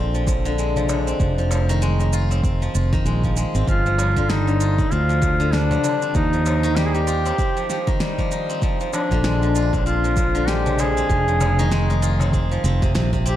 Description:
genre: organic downtempo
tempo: 97 BPM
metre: 4/4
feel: swing 59% on 16ths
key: F dorian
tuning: A4 = 440 Hz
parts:
  - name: steel-string zither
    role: arpeggios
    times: 0.0-13.4 s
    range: C3 to F4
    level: -24 LUFS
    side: left 2 dB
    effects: ping-pong delay
  - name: fretless electric bass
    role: bass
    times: 0.0-13.3 s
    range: F1 to Eb2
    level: -20 LUFS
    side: equal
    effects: tube saturation, sidechain pumping
  - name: electronic shaker and snare drum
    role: drums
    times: 0.1-13.4 s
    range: none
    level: -29 LUFS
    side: equal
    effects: none
  - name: electronic kick drum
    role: drums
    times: 0.3-13.2 s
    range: none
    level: -23 LUFS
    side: equal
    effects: none
  - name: darbuka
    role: percussion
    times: 0.3-12.3 s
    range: none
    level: -31 LUFS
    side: left 2 dB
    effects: none
  - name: clear duduk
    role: melody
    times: 3.7-13.4 s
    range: D4 to Ab4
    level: -24 LUFS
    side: equal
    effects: ping-pong delay
room: light reverb, studio reverb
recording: dark, warm production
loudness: -17 LUFS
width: side -12 dB against mid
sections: 0.0-13.4 A section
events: none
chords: 0.0 Bb7; 1.2 Fm7; 3.7 G5; 6.2 Eb6; 8.6 Bb7; 11.1 Fm7

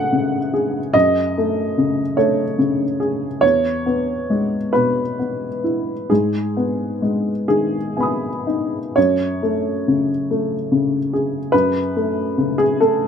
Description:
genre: neoclassical minimalist piano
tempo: 38-49 BPM (dotted quarters)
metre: 6/8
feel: rubato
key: F# dorian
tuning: A4 = 441 Hz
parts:
  - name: dark upright piano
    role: solo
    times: 0.0-13.1 s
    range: E2 to D#6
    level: -17 LUFS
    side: equal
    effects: none
room: light reverb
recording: close, detailed microphones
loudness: -17 LUFS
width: side -7 dB against mid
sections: 0.0-9.0 A section; 9.0-13.1 A section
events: none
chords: 0.0 F#madd9; 3.4 E; 6.1 G#m; 9.0 F#madd9

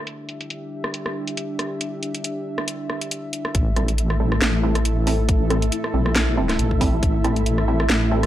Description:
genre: deep dubstep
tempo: 138 BPM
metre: 4/4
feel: swing 55% on 16ths, half-time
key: A minor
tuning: A4 = 440 Hz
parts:
  - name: dark analog pad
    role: sustained chords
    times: 0.0-8.3 s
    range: A3 to E5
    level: -27 LUFS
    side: left 1 dB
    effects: chorus
  - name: garage drum kit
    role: drums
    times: 0.1-8.3 s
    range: hi-hat, rim click, snare drum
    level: -25 LUFS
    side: equal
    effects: none
  - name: deep soft wobble bass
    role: bass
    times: 3.5-8.3 s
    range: A1 to Bb1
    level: -21 LUFS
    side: equal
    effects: chorus, tube saturation
  - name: electronic kick drum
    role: drums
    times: 3.5-7.1 s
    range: none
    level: -20 LUFS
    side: equal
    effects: none
  - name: flickering grainy texture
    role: texture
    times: 3.9-8.3 s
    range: E4 to E5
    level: -31 LUFS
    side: equal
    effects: built-in reverb
  - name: filtered dub chord stab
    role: stabs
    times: 3.8-8.2 s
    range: G3 to A4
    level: -27 LUFS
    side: right 3 dB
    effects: phaser, cassette tape, dub echo
room: light reverb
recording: dry, gritty hardware recording, low-pass filter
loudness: -19 LUFS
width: side -13 dB against mid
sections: 0.0-3.5 A section; 3.5-8.3 B section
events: filter sweep on analog synth pad 0.0-3.5; drop 3.5-8.3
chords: 0.0 D5; 3.5 Am7

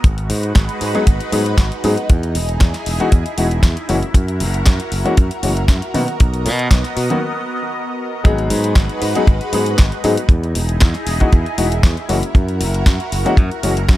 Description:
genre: nu-disco, nu disco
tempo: 117 BPM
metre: 4/4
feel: swing 53% on 16ths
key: G# minor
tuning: A4 = 442 Hz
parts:
  - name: lush unison pad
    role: sustained chords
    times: 0.0-14.0 s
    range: G#3 to D#5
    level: -24 LUFS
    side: equal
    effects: chorus, phaser, sidechain pumping
  - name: modern bright fingered electric bass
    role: bass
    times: 0.0-14.0 s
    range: E1 to B2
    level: -19 LUFS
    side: equal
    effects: none
  - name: house drum kit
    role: drums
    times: 0.0-14.0 s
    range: hi-hat, snare drum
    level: -24 LUFS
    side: left 1 dB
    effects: none
  - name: kick drum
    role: drums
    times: 0.0-14.0 s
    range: none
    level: -11 LUFS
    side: equal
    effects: none
  - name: warm grand piano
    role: accompaniment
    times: 0.9-13.7 s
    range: D#3 to G#4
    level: -20 LUFS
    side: left 2 dB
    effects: analog delay
room: studio reverb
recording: none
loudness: -14 LUFS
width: side -15 dB against mid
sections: 0.0-8.2 A section; 8.2-14.0 B section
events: break 7.2-8.2; drop 8.2-14.0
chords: 0.0 G#m7; 2.1 Emaj7; 3.9 F#7; 5.9 Bmaj7; 8.2 G#m7; 10.3 Emaj7; 12.1 F#7

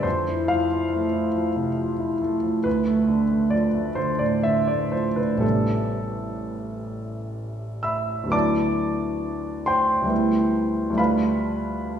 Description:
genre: classical, impressionist solo piano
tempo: 60-73 BPM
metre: 3/4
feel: rubato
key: unclear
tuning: A4 = 439 Hz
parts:
  - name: clear grand piano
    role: solo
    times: 0.0-12.0 s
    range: A1 to E6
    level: -21 LUFS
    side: equal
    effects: none
room: wet recital hall reverb, RT60 1.5 s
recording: heard from further back in the room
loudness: -21 LUFS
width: side -8 dB against mid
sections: 0.0-8.3 A section; 8.3-12.0 B section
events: none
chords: 0.0 Fmaj7; 2.7 Dm6; 5.4 Am11; 8.3 D13; 10.1 Am11/D; 11.0 G9/D

